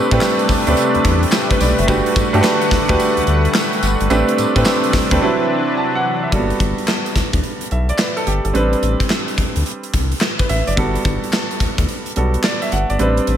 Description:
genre	R&B, new jack swing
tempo	108 BPM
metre	4/4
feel	swing 64% on 16ths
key	G major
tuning	A4 = 444 Hz
part	clear baby grand piano	accompaniment	0.0-13.4 s	F#3 to A5	-18 LUFS	right 2 dB	none
part	lush unison pad	sustained chords	0.0-6.3 s	C3 to F#5	-21 LUFS	left 3 dB	chorus
part	round analog bass	bass	0.1-13.4 s	F#1 to A2	-19 LUFS	left 1 dB	none
part	gated 80s drum kit	drums	0.1-13.4 s	handclaps, hi-hat, kick drum, snare drum, tambourine	-19 LUFS	equal	none
room	light reverb, studio reverb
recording	none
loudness	-14 LUFS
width	side -10 dB against mid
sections	0.0-6.3 A section; 6.3-13.4 B section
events	break 5.2-6.3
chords	0.0 Am11; 1.9 Gmaj9; 4.1 Am11; 5.2 D13; 6.3 Gmaj9; 8.5 Am11; 10.8 Gmaj9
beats	0.21 0.77 1.33 | 1.88 2.44 2.99 3.55 | 4.10 4.66 5.21 5.77 | 6.33 6.88 7.44 7.99 | 8.55 9.10 9.66 10.21 | 10.77 11.33 11.88 12.44 | 12.99

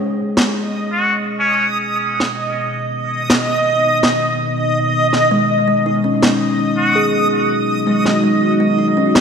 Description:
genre	half-time drum and bass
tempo	164 BPM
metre	4/4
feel	swing 59% on 16ths, half-time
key	G# minor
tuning	A4 = 440 Hz
part	deep dark ambient pad	sustained chords	0.0-9.2 s	B3 to E#5	-22 LUFS	left 1 dB	chorus, built-in reverb
part	backwards swelling texture	texture	0.7-9.2 s	D#5	-18 LUFS	right 1 dB	built-in reverb
part	electronic snare drum	drums	0.4-9.2 s	none	-18 LUFS	equal	studio reverb
part	trumpet with straight mute	melody	0.9-1.7, 6.8-7.0 s	C#4 to F#4	-20 LUFS	left 1 dB	tape echo
part	kalimba	arpeggios	5.3-9.2 s	G#3 to G#4	-19 LUFS	equal	vintage 12-bit sampler grit, diffuse ambient delay
room	wet lush hall reverb, RT60 2.1 s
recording	dreamy mix soaked in reverb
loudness	-14 LUFS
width	side -6 dB against mid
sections	0.0-9.2 A section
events	filter sweep on ambient pad 0.0-9.2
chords	0.0 G#m; 5.3 B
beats	0.19 0.56 | 0.92 1.29 1.65 2.02 | 2.38 2.75 3.12 3.48 | 3.85 4.21 4.58 4.95 | 5.31 5.68 6.04 6.41 | 6.78 7.14 7.51 7.87 | 8.24 8.60 8.97

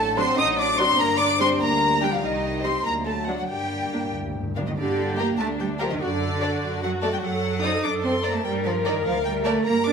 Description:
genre	quick classical-period movement for symphony orchestra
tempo	98 BPM (dotted quarters)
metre	6/8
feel	rubato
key	G minor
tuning	A4 = 439 Hz
part	warm chamber violin section	melody	0.0-9.9 s	D5 to Eb6	-26 LUFS	left 2 dB	none
part	mellow hollow silver concert flute	second line	0.0-4.1 s	Eb5 to Eb6	-28 LUFS	left 1 dB	none
part	warm chamber violin section	second line	0.0-9.5 s	Eb4 to Eb5	-31 LUFS	left 2 dB	none
part	dark French horn section	sustained chords	0.0-4.5 s	F#3 to Eb4	-29 LUFS	left 3 dB	none
part	warm chamber double bass section	bass	0.0-9.9 s	G1 to G2	-32 LUFS	right 3 dB	none
part	warm symphonic cello section	bass	0.0-9.9 s	D3 to Eb4	-27 LUFS	right 3 dB	none
part	warm chamber viola section	accompaniment	0.2-9.9 s	F#3 to Bb4	-29 LUFS	right 1 dB	none
part	timpani	percussion	3.5-4.7 s	G2	-34 LUFS	left 1 dB	none
room	moderate scoring stage reverb, RT60 1.7 s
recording	minimal, uncompressed stereo recording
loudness	-21 LUFS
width	side -6 dB against mid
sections	0.0-4.8 A section; 4.8-9.9 A section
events	timpani fill 3.5-4.8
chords	0.0 D7/A; 1.0 Gm; 2.2 Cm; 2.8 D; 3.5 Gm; 6.0 D/F#; 7.2 D7/F#; 8.4 Gm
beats	0.38 | 0.99 1.60 | 2.22 2.84 | 3.49 4.14 | 4.77 5.39 | 6.00 6.62 | 7.22 7.83 | 8.44 9.05 | 9.65

